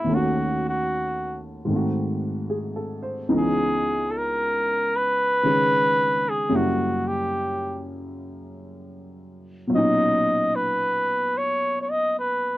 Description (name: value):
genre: jazz ballad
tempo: 75 BPM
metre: 4/4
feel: swing 67% on 8ths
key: unclear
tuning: A4 = 440 Hz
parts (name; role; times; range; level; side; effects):
- clear flugelhorn; melody; 0.0-12.6 s; E4 to D#5; -22 LUFS; equal; none
- warm baby grand piano; accompaniment; 0.0-12.6 s; C#2 to B#4; -25 LUFS; equal; none
room: little or no reverb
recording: dry, close 1970s-style studio recording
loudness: -21 LUFS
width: side -16 dB against mid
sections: 0.0-12.6 A section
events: none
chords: 0.1 D#m7b5; 1.7 G#7b9; 3.3 C#m7; 6.5 F#7b9; 9.7 Bmaj9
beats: | 0.08 0.89 1.69 2.49 | 3.29 4.09 4.89 5.69 | 6.49 7.29 8.10 8.91 | 9.71 10.52 11.33 12.13